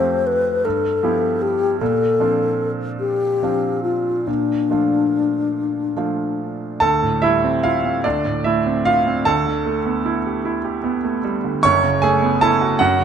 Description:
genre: classical, impressionist duo for alto flute and grand piano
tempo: 46-53 BPM (dotted quarters)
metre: 6/8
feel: rubato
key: unclear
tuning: A4 = 443 Hz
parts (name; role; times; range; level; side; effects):
- mellow wooden-headed alto flute; melody; 0.0-6.4 s; D4 to C5; -19 LUFS; left 4 dB; none
- clear grand piano; accompaniment; 0.0-13.0 s; F#1 to C#6; -18 LUFS; right 3 dB; none
room: moderate scoring stage reverb, RT60 1.8 s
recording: close, detailed microphones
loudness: -17 LUFS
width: side -8 dB against mid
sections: 0.0-6.8 A section; 6.8-13.0 B section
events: none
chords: 0.0 Fadd9; 0.6 G13; 1.8 Bbmaj9; 4.3 Bbmaj7; 6.8 Dm11; 8.1 Fmaj7/D; 9.3 G69/D; 11.6 F#m11

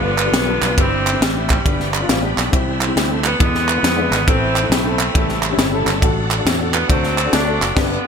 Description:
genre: uptempo gospel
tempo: 137 BPM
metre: 4/4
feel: swing 65% on 8ths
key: unclear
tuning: A4 = 438 Hz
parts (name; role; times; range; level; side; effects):
- bright saxophone section; melody; 0.0-8.1 s; C3 to D4; -21 LUFS; right 1 dB; ping-pong delay
- dark upright piano; accompaniment; 0.0-8.0 s; G2 to B4; -23 LUFS; left 4 dB; lush chorus
- bright tonewheel organ; sustained chords; 0.0-8.1 s; C#3 to A4; -27 LUFS; right 2 dB; slow rotary speaker, chorus vibrato
- fingered electric bass; bass; 0.0-8.0 s; F#1 to F2; -23 LUFS; equal; none
- crisp fusion drum kit; drums; 0.2-8.0 s; crash cymbal, kick drum, ride cymbal, snare drum; -18 LUFS; equal; none
- group handclap; percussion; 0.2-7.7 s; none; -25 LUFS; right 7 dB; none
room: moderate plate reverb, RT60 1.5 s, small room ambience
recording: bright 1980s-style digital production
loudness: -14 LUFS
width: side -6 dB against mid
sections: 0.0-8.1 A section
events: band accent 7.8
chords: 0.0 G7; 0.8 C/G; 1.7 G; 2.5 C; 3.4 E7; 4.3 Am; 5.2 A7; 6.0 D/A

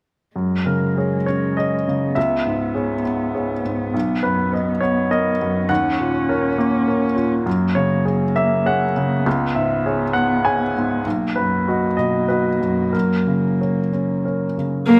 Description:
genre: neoclassical piano and strings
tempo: 100 BPM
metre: 3/4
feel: rubato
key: F# mixolydian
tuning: A4 = 440 Hz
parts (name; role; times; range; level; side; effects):
- dark cello; second line; 0.4-14.7 s; G#3 to C#4; -28 LUFS; equal; none
- clear upright piano; accompaniment; 0.4-15.0 s; B1 to G#5; -21 LUFS; equal; none
- dark viola; accompaniment; 14.9-15.0 s; A#3; -11 LUFS; equal; none
room: light reverb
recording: none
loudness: -20 LUFS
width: mono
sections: 0.4-14.9 A section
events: none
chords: 0.4 F#add9; 2.2 C#m7; 3.9 Bmaj7; 5.7 D#m7; 7.5 F#add9; 9.3 C#m7; 11.0 Bmaj7; 12.9 F#

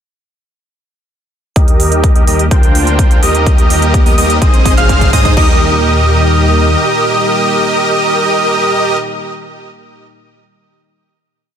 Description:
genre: EDM, festival progressive house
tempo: 126 BPM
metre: 4/4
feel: straight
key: Eb major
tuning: A4 = 440 Hz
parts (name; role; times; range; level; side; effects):
- lush unison pad; sustained chords; 1.6-9.0 s; Bb2 to G4; -21 LUFS; left 1 dB; chorus, sidechain pumping
- wide unison lead; arpeggios; 1.6-9.0 s; Eb6 to G6; -17 LUFS; equal; sidechain pumping, digital delay
- dense compressed supersaw; riff; 1.6-9.0 s; D4 to G5; -14 LUFS; right 1 dB; sidechain pumping, low-pass filter, digital delay
- wide detuned saw bass; bass; 1.6-6.8 s; Ab1 to Ab2; -14 LUFS; equal; chorus, sidechain pumping
- big-room dance drum kit; drums; 1.6-5.5 s; crash cymbal, hi-hat; -21 LUFS; right 4 dB; high-pass filter on hats, high-pass filter on cymbals
- electronic kick drum; drums; 1.6-5.5 s; none; -10 LUFS; equal; none
- riser; sound effects; 3.2-5.4 s; none; -24 LUFS; left 1 dB; none
room: light reverb, digital ambience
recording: dense, heavily limited modern master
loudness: -8 LUFS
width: side -8 dB against mid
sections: 1.6-5.4 build; 5.4-9.2 final chord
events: build-up 1.6-5.4; filter sweep on supersaw synth 1.6-5.4; filter sweep on analog synth lead 1.6-5.4; riser 3.2-5.4; drum fill 3.5-5.4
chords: 1.6 Eb; 2.5 Bbadd9/D; 3.5 Eb; 4.4 Ab; 5.4 Eb

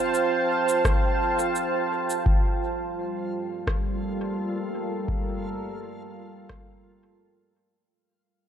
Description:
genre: ambient dub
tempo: 85 BPM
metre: 4/4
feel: swing 54% on 16ths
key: G minor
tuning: A4 = 440 Hz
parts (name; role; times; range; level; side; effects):
- deep dark ambient pad; sustained chords; 0.0-7.9 s; G3 to A5; -26 LUFS; right 2 dB; chorus, built-in reverb
- electronic shaker and rim click; drums; 0.1-6.6 s; none; -31 LUFS; equal; dub echo
- electronic kick drum; drums; 0.8-6.6 s; none; -24 LUFS; equal; none
- backwards swelling texture; texture; 3.0-7.9 s; F4 to F5; -41 LUFS; left 3 dB; built-in reverb
room: light reverb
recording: dark, warm production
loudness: -24 LUFS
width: side -9 dB against mid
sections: 0.0-2.3 A section; 2.3-7.9 B section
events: fade-out 2.3-7.9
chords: 0.0 F; 2.3 Gm7

